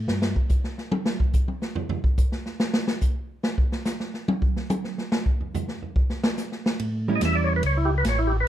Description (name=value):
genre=soul jazz organ trio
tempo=143 BPM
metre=4/4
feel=swing 66% on 8ths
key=unclear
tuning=A4 = 439 Hz
part: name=mellow tonewheel organ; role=bass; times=0.0-0.4, 6.8-8.5 s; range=A1 to A2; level=-24 LUFS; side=equal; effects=slow rotary speaker
part: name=swinging big-band drum kit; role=drums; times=0.1-8.2 s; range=hi-hat, kick drum, ride cymbal, snare drum, toms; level=-24 LUFS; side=equal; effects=none
part: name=hollow-body jazz guitar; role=accompaniment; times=7.1-7.6 s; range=G3 to E4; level=-27 LUFS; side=right 7 dB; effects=none
part: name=percussive tonewheel organ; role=melody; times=7.2-8.5 s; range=E4 to E5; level=-24 LUFS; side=equal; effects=slow rotary speaker
room=light reverb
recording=dark, warm production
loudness=-22 LUFS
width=side -12 dB against mid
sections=0.0-8.5 A section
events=tonewheel organ solo 0.0-8.5; drum solo 0.1-6.8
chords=0.1 N.C.; 6.8 A7